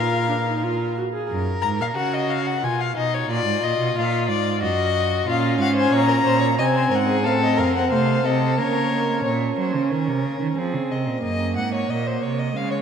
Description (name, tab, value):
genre	classical, baroque-style fugue for string quartet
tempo	90 BPM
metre	3/4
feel	straight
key	Eb minor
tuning	A4 = 441 Hz
part	warm violin	melody	0.0-9.2 s	Db5 to Bb5	-24 LUFS	left 6 dB	none
part	warm violin	second line	0.0-12.8 s	Eb4 to Gb5	-25 LUFS	left 2 dB	none
part	dark viola	accompaniment	0.0-1.3, 5.3-12.8 s	Ab3 to Ab4	-24 LUFS	right 1 dB	none
part	clear cello	bass	0.0-12.8 s	F2 to Gb3	-25 LUFS	right 4 dB	none
room	wet cathedral reverb, RT60 5.3 s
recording	in a vast, echoing space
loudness	-19 LUFS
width	side -7 dB against mid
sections	0.0-1.3 A section; 1.3-9.3 B section; 9.3-12.8 A section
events	none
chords	0.0 Bb5; 1.3 Ebm/Gb (rootless); 2.6 Fm7b5/Cb; 3.3 Bb; 4.6 Ebm/Gb; 5.3 Bbm; 6.6 C(b5, no3); 7.2 F; 8.6 Bbm/Db; 9.3 Gb/Bb; 10.6 Fm; 11.2 Ebm/Gb